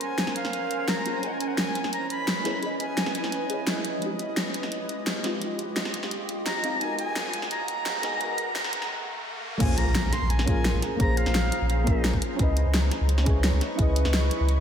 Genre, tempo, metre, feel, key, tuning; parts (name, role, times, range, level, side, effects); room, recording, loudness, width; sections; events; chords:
liquid drum and bass; 172 BPM; 4/4; straight; Bb minor; A4 = 440 Hz
bright reedy silver concert flute; melody; 0.0-3.8, 6.5-12.2 s; F5 to C6; -32 LUFS; right 1 dB; diffuse ambient delay
deep mellow chord stab; accompaniment; 0.0-14.6 s; F3 to Eb5; -32 LUFS; left 1 dB; chorus, cassette tape, ping-pong delay
shimmering ambient pad; sustained chords; 0.0-14.6 s; Ab3 to Db6; -33 LUFS; right 1 dB; chorus, built-in reverb
pop drum kit; drums; 0.0-14.6 s; crash cymbal, hi-hat, snare drum; -30 LUFS; equal
riser and impact; sound effects; 7.4-11.0 s; -35 LUFS; equal
warm sub bass; bass; 9.6-14.6 s; Bb1 to Db2; -24 LUFS; equal
electronic kick drum; drums; 9.6-13.9 s; -25 LUFS; equal
wet lush hall reverb, RT60 1.8 s; dreamy mix soaked in reverb, high-pass filter; -24 LUFS; side -8 dB against mid
0.0-9.6 A section; 9.6-14.6 B section
build-up 0.0-9.6; filter sweep on synth stab 0.0-9.6; riser 7.4-9.6; break 8.9-9.6; drop 9.6-14.6; impact 9.6-11.0
0.0 Bbm9; 1.2 Dbm9; 4.0 Fm9; 6.8 Abm9; 9.6 Bbm9; 12.4 Dbm9